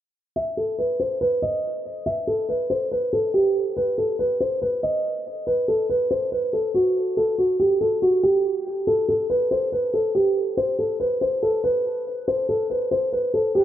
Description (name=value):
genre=hip hop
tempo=141 BPM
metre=4/4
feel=half-time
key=unclear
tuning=A4 = 440 Hz
part: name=dark concert grand piano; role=melody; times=0.4-13.6 s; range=F#4 to E5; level=-20 LUFS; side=equal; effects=low-pass filter, dub echo
room=moderate plate reverb, RT60 2.8 s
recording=echo-heavy mix, low-pass filter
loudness=-20 LUFS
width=side -11 dB against mid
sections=0.4-13.6 A section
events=filter sweep 0.4-13.6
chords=none